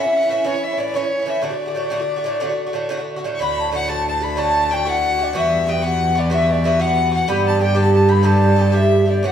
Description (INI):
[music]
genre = celtic folk, Celtic slide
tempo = 123 BPM (dotted quarters)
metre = 12/8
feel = straight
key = D major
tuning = A4 = 441 Hz
[part]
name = mellow hollow baroque flute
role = melody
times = 0.0-9.3 s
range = C#5 to B5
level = -20 LUFS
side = left 2 dB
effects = none
[part]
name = clear fiddle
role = second line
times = 0.0-9.3 s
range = C#5 to C#6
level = -27 LUFS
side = left 2 dB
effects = none
[part]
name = Irish bouzouki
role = accompaniment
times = 0.0-9.3 s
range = G2 to G4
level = -21 LUFS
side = right 3 dB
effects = none
[part]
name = warm cello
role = bass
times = 3.4-9.3 s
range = D2 to A2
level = -19 LUFS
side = left 1 dB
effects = none
[sound]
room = wet stone room reverb, RT60 1.5 s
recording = band playing live in one room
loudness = -16 LUFS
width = side -9 dB against mid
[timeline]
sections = 0.0-3.4 A section; 3.4-9.3 B section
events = none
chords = 0.0 A; 1.4 D; 5.3 Emadd9; 7.3 G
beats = 0.47 0.96 | 1.44 1.93 2.42 2.91 | 3.40 3.88 4.37 4.86 | 5.34 5.83 6.32 6.80 | 7.29 7.77 8.26 8.74 | 9.23